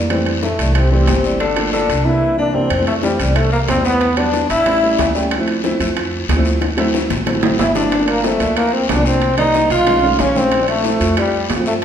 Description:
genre	Afro-Cuban jazz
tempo	184 BPM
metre	4/4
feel	straight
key	F major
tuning	A4 = 442 Hz
part	dark upright piano	accompaniment	0.0-11.8 s	C2 to D5	-20 LUFS	right 1 dB	none
part	upright bass	bass	0.0-11.8 s	G1 to G2	-21 LUFS	right 1 dB	none
part	bongos	percussion	0.1-11.8 s	none	-26 LUFS	left 6 dB	none
part	guiro	percussion	0.1-11.8 s	none	-28 LUFS	left 5 dB	none
part	timbales	percussion	0.1-11.8 s	none	-24 LUFS	right 5 dB	none
part	clear trombone	melody	0.4-5.1, 7.6-11.7 s	G3 to F4	-18 LUFS	equal	none
part	growling tenor saxophone	second line	0.4-5.1, 7.6-11.7 s	A2 to F4	-21 LUFS	left 3 dB	none
room	wet recital hall reverb, RT60 1.3 s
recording	recorded in a church or concert hall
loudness	-13 LUFS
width	side -8 dB against mid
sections	0.0-2.7 A section; 2.7-11.8 B section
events	drum fill 6.6-7.9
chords	0.1 Fmaj9; 1.4 Gm7; 2.1 C7; 2.7 Fmaj7; 4.0 Em7; 4.7 A7; 5.3 Dm9; 6.6 D7; 7.9 Gm9; 9.2 Cm7; 9.9 B13; 10.5 Bbmaj7

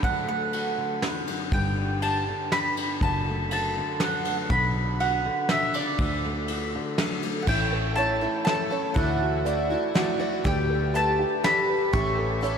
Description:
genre	indie folk with a building arrangement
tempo	121 BPM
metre	3/4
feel	straight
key	D major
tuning	A4 = 440 Hz
part	mandolin	melody	0.0-12.6 s	D5 to C#6	-27 LUFS	right 1 dB	ping-pong delay
part	fingerpicked steel-string acoustic guitar	accompaniment	0.0-9.0 s	D2 to G4	-32 LUFS	left 1 dB	none
part	soft brush drum kit	drums	0.0-12.6 s	crash cymbal, hi-hat, kick drum, ride cymbal, snare drum	-30 LUFS	equal	none
part	fingered electric bass	bass	1.5-12.6 s	F#1 to D2	-29 LUFS	equal	none
part	clear concert grand piano	accompaniment	7.5-12.6 s	A1 to F#5	-34 LUFS	left 4 dB	analog chorus
part	picked plugged-in twelve-string acoustic guitar	accompaniment	7.5-12.6 s	A2 to B4	-30 LUFS	left 6 dB	none
part	dark upright piano	arpeggios	7.5-12.6 s	E4 to D5	-28 LUFS	right 4 dB	ping-pong delay
room	wet huge ambient reverb, RT60 4.9 s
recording	dreamy mix soaked in reverb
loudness	-23 LUFS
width	side -7 dB against mid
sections	0.0-7.5 A section; 7.5-12.6 B section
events	none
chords	0.0 D; 1.5 G; 3.0 D/F#; 4.5 Bmadd9; 6.0 D; 7.5 A; 9.0 Dadd9; 10.5 Gadd9/D; 11.9 A7

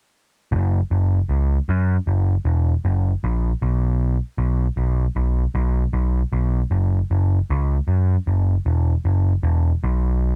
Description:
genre	rock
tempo	78 BPM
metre	4/4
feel	straight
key	F# mixolydian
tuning	A4 = 440 Hz
part	overdriven picked electric bass	bass	0.5-10.4 s	E1 to F#2	-20 LUFS	equal	none
room	little or no reverb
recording	home recording on cassette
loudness	-21 LUFS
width	mono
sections	0.5-10.4 A section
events	none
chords	none

